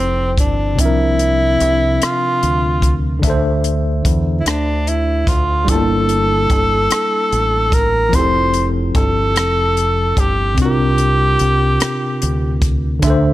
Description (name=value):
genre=slow six-eight R&B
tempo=49 BPM (dotted quarters)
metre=6/8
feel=straight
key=unclear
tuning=A4 = 440 Hz
part: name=clear tenor saxophone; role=melody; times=0.0-12.6 s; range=C4 to C5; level=-17 LUFS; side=equal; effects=slapback echo
part: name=tine electric piano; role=accompaniment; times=0.0-13.3 s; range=C3 to A5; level=-20 LUFS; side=equal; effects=overdrive, medium stereo tremolo
part: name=deep dub fingered electric bass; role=bass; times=0.0-13.3 s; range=F1 to E2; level=-18 LUFS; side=equal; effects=none
part: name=compact cocktail drum kit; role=drums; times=0.4-13.2 s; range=hi-hat, kick drum, rim click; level=-19 LUFS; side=equal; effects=none
room=light reverb, small room reverb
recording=none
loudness=-13 LUFS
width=side -15 dB against mid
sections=0.0-13.3 A section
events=none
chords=0.0 Fmaj9; 0.8 C7sus4; 3.2 D5; 5.7 Gm69; 8.1 Fmaj9; 10.6 C7sus4